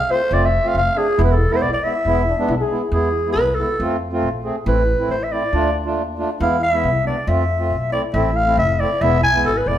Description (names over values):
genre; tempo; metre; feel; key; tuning
klezmer; 138 BPM; 2/4; straight; E phrygian dominant; A4 = 440 Hz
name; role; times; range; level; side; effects
growling clarinet; melody; 0.0-9.8 s; G#4 to G#5; -19 LUFS; left 1 dB; none
mellow accordion; accompaniment; 0.1-9.8 s; G#3 to G#4; -22 LUFS; right 2 dB; none
upright bass; bass; 0.3-9.8 s; E1 to F2; -21 LUFS; equal; none
mellow trombone; second line; 2.3-2.9 s; D4 to G#4; -25 LUFS; left 4 dB; none
room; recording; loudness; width
wet stone room reverb, RT60 1.2 s; band playing live in one room; -16 LUFS; side -11 dB against mid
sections
0.0-2.9 A section; 2.9-9.8 B section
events
clarinet solo 2.9-9.8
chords
0.0 F; 1.2 E; 3.8 F; 4.7 Am; 5.5 Dm; 6.4 E; 7.3 F; 8.1 Am; 9.0 E